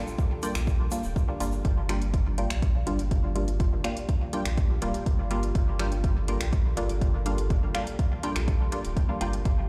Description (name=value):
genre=dub techno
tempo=123 BPM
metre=4/4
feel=straight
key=G minor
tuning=A4 = 440 Hz
part: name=dark analog pad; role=sustained chords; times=0.0-9.7 s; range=Bb3 to D5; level=-43 LUFS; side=equal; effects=chorus, phaser, sidechain pumping
part: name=filtered dub chord stab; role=riff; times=0.0-9.3 s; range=F4 to G5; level=-46 LUFS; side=equal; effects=ensemble chorus, vintage 12-bit sampler grit, sidechain pumping, dub echo
part: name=filtered dub chord stab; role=stabs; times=0.0-9.4 s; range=G3 to F4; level=-35 LUFS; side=equal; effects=chorus, phaser, sidechain pumping, dub echo
part: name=egg shaker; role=percussion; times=0.1-1.6 s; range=none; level=-46 LUFS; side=equal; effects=none
part: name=electronic kick drum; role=drums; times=0.2-9.6 s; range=none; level=-28 LUFS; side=equal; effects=overdrive
part: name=deep house drum kit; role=drums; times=0.4-9.6 s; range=finger snaps, hi-hat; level=-41 LUFS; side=equal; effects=overdrive
part: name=pure sine sub bass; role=bass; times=0.6-9.7 s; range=D1 to Bb1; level=-31 LUFS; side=equal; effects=sidechain pumping
room=digital ambience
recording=played on a big sound system in a bare room, large studio reverb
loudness=-27 LUFS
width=mono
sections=0.0-1.6 A section; 1.6-9.7 A section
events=none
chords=0.0 Gm7